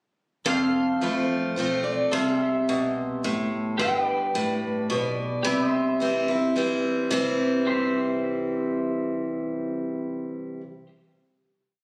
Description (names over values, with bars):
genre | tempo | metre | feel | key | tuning
honky-tonk and classic country | 108 BPM | 3/4 | straight | C major | A4 = 439 Hz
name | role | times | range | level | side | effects
picked acoustic archtop guitar | melody | 0.5-10.3 s | B4 to G5 | -32 LUFS | equal | none
picked steel-string acoustic guitar | accompaniment | 0.5-10.6 s | F2 to F4 | -27 LUFS | equal | none
pedal steel guitar | sustained chords | 0.5-10.9 s | G4 to F5 | -34 LUFS | equal | none
upright bass | bass | 0.5-10.3 s | F1 to C2 | -44 LUFS | equal | none
room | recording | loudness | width
moderate recital hall reverb, RT60 1.4 s | recorded on a phone in the room, studio reverb | -25 LUFS | mono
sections
0.5-7.1 A section; 7.1-10.4 final chord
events
none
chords
0.5 F; 2.1 C; 3.8 G; 5.5 C